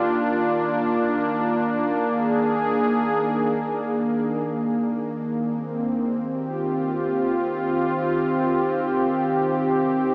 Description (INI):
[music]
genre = ambient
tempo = free time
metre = none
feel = none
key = Eb major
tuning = A4 = 440 Hz
[part]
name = warm analog pad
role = solo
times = 0.0-10.1 s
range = Eb3 to Ab4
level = -23 LUFS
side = equal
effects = chorus, tape echo
[sound]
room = wet huge ambient reverb, RT60 8.6 s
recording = small speaker sound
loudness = -23 LUFS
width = mono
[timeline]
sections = 0.0-4.5 A section; 4.5-10.1 B section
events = none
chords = 0.1 Bb7/Eb; 4.5 Eb69; 8.8 F7sus2/Eb